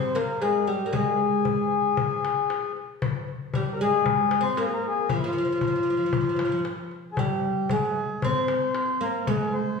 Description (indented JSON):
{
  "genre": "Arabic maqam ensemble",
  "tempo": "115 BPM",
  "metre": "4/4",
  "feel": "straight",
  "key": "unclear",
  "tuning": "A4 = 435 Hz",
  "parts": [
    { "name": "mellow accordion", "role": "melody", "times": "0.0-9.8 s", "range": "E4 to C5", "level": "-25 LUFS", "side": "left 4 dB", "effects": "none" },
    { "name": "oud", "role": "second line", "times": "0.0-9.8 s", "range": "F3 to C4", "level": "-28 LUFS", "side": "equal", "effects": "none" },
    { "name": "darbuka", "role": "percussion", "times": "0.0-9.6 s", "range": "none", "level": "-30 LUFS", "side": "left 5 dB", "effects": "none" }
  ],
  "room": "wet recital hall reverb, RT60 1.3 s",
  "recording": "heard from further back in the room",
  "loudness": "-23 LUFS",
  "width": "side -5 dB against mid",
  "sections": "0.0-7.2 A section; 7.2-9.8 B section",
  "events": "none",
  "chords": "none",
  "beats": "0.42 | 0.94 1.46 1.98 2.50 | 3.02 3.54 4.07 4.59 | 5.11 5.63 6.15 6.67 | 7.19 7.71 8.23 8.75 | 9.27 9.79"
}